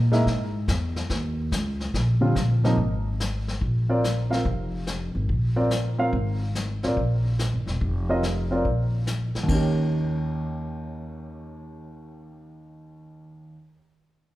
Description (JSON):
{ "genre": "jazz piano trio", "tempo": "143 BPM", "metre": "4/4", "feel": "swing 67% on 8ths", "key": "Eb mixolydian", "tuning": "A4 = 440 Hz", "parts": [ { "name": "upright bass", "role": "bass", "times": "0.0-13.6 s", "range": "E1 to Bb2", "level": "-25 LUFS", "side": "equal", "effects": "none" }, { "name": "warm upright piano", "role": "melody", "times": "0.1-13.7 s", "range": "Eb2 to F5", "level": "-26 LUFS", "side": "right 1 dB", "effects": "none" }, { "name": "vintage brush drum kit", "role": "drums", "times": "0.1-9.8 s", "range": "brushed snare drum, crash cymbal, hi-hat, kick drum, snare drum", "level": "-31 LUFS", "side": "left 1 dB", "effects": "none" } ], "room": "moderate large studio reverb, RT60 1.4 s", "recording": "heard from further back in the room", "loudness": "-22 LUFS", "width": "side -16 dB against mid", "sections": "0.0-2.8 A section; 2.8-9.5 B section; 9.5-12.8 C section", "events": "none", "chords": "0.3 E; 1.1 Dbsus2; 1.9 Bb5; 2.8 N.C.; 3.6 Bbsus2; 4.4 Fm; 5.3 Bbsus2; 6.1 N.C.; 7.0 E; 7.8 F5; 8.6 N.C.; 9.5 Eb7" }